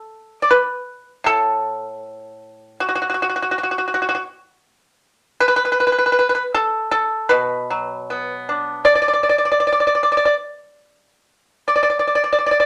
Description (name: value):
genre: chinese traditional, Chinese solo plucked strings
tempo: 71-81 BPM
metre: 4/4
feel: rubato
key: D gong mode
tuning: A4 = 440 Hz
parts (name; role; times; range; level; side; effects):
- pipa; solo; 0.0-12.6 s; A2 to D5; -18 LUFS; equal; none
room: moderate studio reverb, RT60 0.6 s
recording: none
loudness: -19 LUFS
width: mono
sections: 0.0-12.7 A section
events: none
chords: none